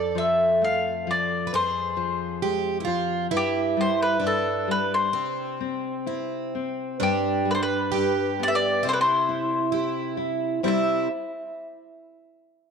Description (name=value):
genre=fado-style ballad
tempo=66 BPM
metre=2/4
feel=rubato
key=C major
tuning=A4 = 441 Hz
part: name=mandolin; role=melody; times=0.0-11.1 s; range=G4 to F5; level=-24 LUFS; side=left 1 dB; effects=none
part: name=picked plugged-in twelve-string acoustic guitar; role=second line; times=0.0-11.1 s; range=C4 to B4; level=-27 LUFS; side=right 8 dB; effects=none
part: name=nylon-string guitar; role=accompaniment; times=0.0-11.1 s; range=F2 to D5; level=-29 LUFS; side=left 10 dB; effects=none
room=wet spring reverb, RT60 1.9 s, studio ambience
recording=1960s-style stereo with parts hard left and right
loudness=-22 LUFS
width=side -6 dB against mid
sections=0.0-7.0 A section; 7.0-10.6 B section; 10.6-12.5 C section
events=none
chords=0.0 F; 1.5 Fm; 3.3 N.C.; 5.1 C; 7.0 N.C.; 7.9 G; 8.8 C; 10.6 Cadd9